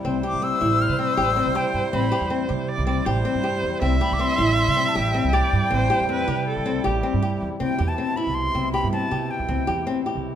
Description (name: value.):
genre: contemporary instrumental, chamber music in an uneven meter.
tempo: 159 BPM.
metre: 5/4.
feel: straight.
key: C major.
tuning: A4 = 439 Hz.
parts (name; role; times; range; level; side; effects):
bright viola; second line; 0.0-7.4 s; G4 to E5; -26 LUFS; right 3 dB; none.
pedal harmonium; sustained chords; 0.0-10.4 s; B2 to E4; -31 LUFS; right 1 dB; none.
flamenco guitar; arpeggios; 0.0-10.3 s; C4 to G4; -26 LUFS; left 3 dB; none.
upright bass; bass; 0.0-10.4 s; A1 to C3; -25 LUFS; right 2 dB; none.
silver concert flute; melody; 0.3-9.9 s; G5 to F6; -26 LUFS; left 2 dB; none.
room: moderate recital hall reverb, RT60 1.4 s.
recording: minimal, uncompressed stereo recording.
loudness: -20 LUFS.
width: side -9 dB against mid.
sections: 0.0-7.6 A section; 7.6-10.4 B section.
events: none.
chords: 0.0 C; 7.6 Cmaj7.